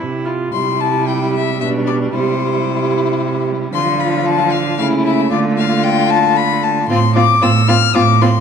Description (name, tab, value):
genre	quick classical-period movement for string quartet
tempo	113 BPM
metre	3/4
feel	straight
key	C major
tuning	A4 = 438 Hz
part	warm violin	second line	0.0-8.3 s	D4 to F4	-20 LUFS	left 4 dB	none
part	rich viola	accompaniment	0.0-8.3 s	F3 to F4	-21 LUFS	right 3 dB	none
part	rich cello	bass	0.0-8.4 s	A2 to D3	-17 LUFS	right 5 dB	none
part	warm violin	melody	0.5-8.4 s	C5 to F6	-18 LUFS	left 9 dB	none
room	moderate recital hall reverb, RT60 1.6 s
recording	dark, warm production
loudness	-13 LUFS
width	side -7 dB against mid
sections	0.5-8.4 A section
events	none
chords	0.0 C; 1.6 G/B; 2.1 C; 3.7 Dm; 4.8 A/C#; 5.3 Dm; 6.9 F/A